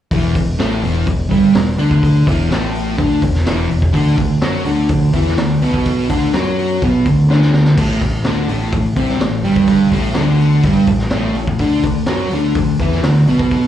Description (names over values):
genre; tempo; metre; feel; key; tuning
garage rock duo or trio; 125 BPM; 4/4; straight; unclear; A4 = 442 Hz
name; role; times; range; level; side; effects
fuzz guitar; riff; 0.1-13.7 s; E2 to F#4; -15 LUFS; equal; distortion, slapback echo
picked electric bass; bass; 0.1-13.7 s; E1 to F#2; -20 LUFS; equal; overdrive
raw garage drum kit; drums; 0.1-13.6 s; crash cymbal, hi-hat, kick drum, snare drum; -19 LUFS; equal; none
room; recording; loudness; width
light reverb, studio reverb; live gig heard through the venue's PA, club reverb; -12 LUFS; side -11 dB against mid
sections
0.1-13.7 A section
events
drum fill 7.3-7.8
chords
0.1 E7sus4; 3.9 Bmadd11; 7.8 Gsus24; 11.6 Bmadd11